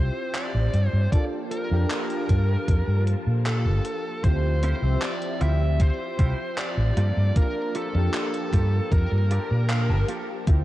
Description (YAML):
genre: vaporwave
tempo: 77 BPM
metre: 4/4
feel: straight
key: unclear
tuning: A4 = 440 Hz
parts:
  - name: bluesy overdriven lead guitar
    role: melody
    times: 0.0-10.1 s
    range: A4 to E5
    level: -32 LUFS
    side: equal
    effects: distortion, vintage 12-bit sampler grit, tape echo
  - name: warbly lo-fi synth keys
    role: accompaniment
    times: 0.0-10.6 s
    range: F3 to E5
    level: -32 LUFS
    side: equal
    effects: lush chorus, tape echo
  - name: soft string machine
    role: sustained chords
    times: 0.0-10.6 s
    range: F3 to A5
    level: -36 LUFS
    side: equal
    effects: ensemble chorus
  - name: fretless electric bass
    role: bass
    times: 0.0-10.6 s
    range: G1 to Bb2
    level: -22 LUFS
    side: equal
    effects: wide subtle chorus
  - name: gated 80s digital drum machine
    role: drums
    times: 0.3-10.6 s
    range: handclaps, hi-hat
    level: -34 LUFS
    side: equal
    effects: gated reverb
  - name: electronic kick drum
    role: drums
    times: 1.1-10.6 s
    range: none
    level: -21 LUFS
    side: equal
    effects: none
  - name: semi-hollow electric guitar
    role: riff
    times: 4.6-10.4 s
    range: Bb3 to A5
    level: -37 LUFS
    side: right 2 dB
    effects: analog chorus, tape echo
room: moderate plate reverb, RT60 2.9 s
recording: dreamy mix soaked in reverb, cassette tape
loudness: -21 LUFS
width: side -15 dB against mid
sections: 0.0-4.2 A section; 4.2-10.6 B section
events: clean electric guitar fill 8.9-10.5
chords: 0.0 Dm11; 0.7 Gm9; 4.2 Dm11; 7.0 Gm9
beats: 0.35 | 1.12 1.90 2.68 3.46 | 4.24 5.02 5.80 6.58 | 7.36 8.14 8.92 9.70 | 10.47